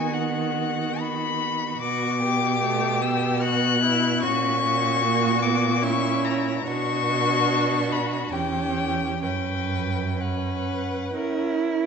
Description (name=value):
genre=classical, slow romantic movement for string quartet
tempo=61-76 BPM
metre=3/4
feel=rubato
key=B minor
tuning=A4 = 439 Hz
part: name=rich violin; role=melody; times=0.0-11.6 s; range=F#5 to F#6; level=-26 LUFS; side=left 8 dB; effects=none
part: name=rich violin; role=second line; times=0.0-11.9 s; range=E4 to B4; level=-30 LUFS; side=left 2 dB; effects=none
part: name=rich viola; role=accompaniment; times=0.0-11.9 s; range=A3 to D4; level=-27 LUFS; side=right 2 dB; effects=none
part: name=rich cello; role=bass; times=0.0-11.9 s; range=E2 to E4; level=-27 LUFS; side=right 5 dB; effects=none
room=moderate scoring stage reverb, RT60 2.1 s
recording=nothing above 8.0 kHz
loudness=-21 LUFS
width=side -6 dB against mid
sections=0.0-11.9 A section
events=none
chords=0.0 B/D#; 1.8 Bm; 4.2 F#/A#; 6.7 Bm; 8.3 C#dim/E; 9.2 F#sus4; 11.1 F#/C#